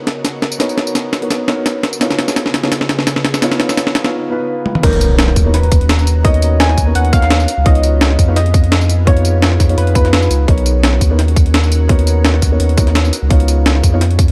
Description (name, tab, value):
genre	liquid drum and bass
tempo	170 BPM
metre	4/4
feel	swing 54% on 16ths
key	B lydian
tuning	A4 = 440 Hz
part	glassy FM pad	sustained chords	0.0-14.3 s	C#3 to A#5	-28 LUFS	equal	ensemble chorus, built-in reverb, sidechain pumping
part	breakbeat sampler-style drum kit	drums	0.1-14.3 s	crash cymbal, hi-hat, snare drum, tambourine, toms	-19 LUFS	equal	none
part	felt-muted upright piano	accompaniment	0.6-14.0 s	B3 to C#5	-22 LUFS	equal	digital delay
part	soft round pluck	melody	4.8-10.3 s	A#4 to G#5	-22 LUFS	equal	chorus, digital delay
part	saturated sub bass	bass	4.8-14.3 s	B1 to E#2	-15 LUFS	equal	tube saturation
part	electronic kick drum	drums	4.8-14.3 s	none	-14 LUFS	equal	none
part	impact	sound effects	4.9-6.2 s	none	-25 LUFS	equal	none
room	light reverb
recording	dark, warm production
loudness	-13 LUFS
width	mono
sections	0.0-4.8 A section; 4.8-14.3 B section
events	build-up 0.0-4.8; drum fill 0.0-4.1, 4.7; break 4.1-4.8; drop 4.8-14.3; impact 4.8-6.2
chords	0.0 Bmaj9; 1.8 C#9; 4.8 Bmaj9; 7.5 C#9; 10.5 Bmaj9; 13.1 C#9